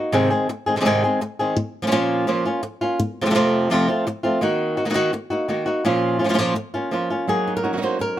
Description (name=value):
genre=flamenco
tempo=168 BPM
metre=4/4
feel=straight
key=Bb minor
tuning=A4 = 441 Hz
part: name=flamenco guitar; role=melody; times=0.0-8.2 s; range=F2 to C5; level=-19 LUFS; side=equal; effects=none
part: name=flamenco guitar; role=stabs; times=7.3-8.2 s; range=Gb3 to Gb4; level=-24 LUFS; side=right 4 dB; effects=none
room=light reverb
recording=close, detailed microphones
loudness=-19 LUFS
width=side -12 dB against mid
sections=0.0-7.3 A section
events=none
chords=0.1 Ab; 1.6 Bbm; 3.0 F; 4.4 Ebm; 5.9 Bbm; 7.3 Gb6